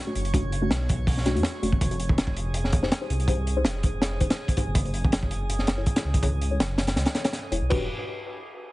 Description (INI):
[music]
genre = drum and bass, jungle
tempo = 163 BPM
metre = 4/4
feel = swing 53% on 16ths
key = unclear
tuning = A4 = 439 Hz
[part]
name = drifting glass-harmonics texture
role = texture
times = 0.0-7.7 s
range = Ab4 to C#6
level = -38 LUFS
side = right 4 dB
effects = chorus, built-in reverb
[part]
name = deep mellow chord stab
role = stabs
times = 0.1-7.8 s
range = A3 to C#5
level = -31 LUFS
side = left 2 dB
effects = chorus, cassette tape, dub echo
[part]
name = dark detuned saw bass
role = bass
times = 0.2-7.9 s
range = Eb1 to E2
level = -28 LUFS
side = equal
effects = none
[part]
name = crunchy breakbeat drum kit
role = drums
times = 0.2-7.8 s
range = crash cymbal, hi-hat, kick drum, snare drum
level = -25 LUFS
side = equal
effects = none
[sound]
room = small room ambience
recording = heavily compressed radio sound, multiband compression, nothing above 10.5 kHz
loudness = -23 LUFS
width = side -19 dB against mid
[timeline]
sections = 0.0-7.7 A section; 7.7-8.7 B section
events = filter sweep on synth stab 0.0-7.7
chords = 0.0 Bm9; 1.8 Fm9; 4.8 F#m9; 7.7 Em9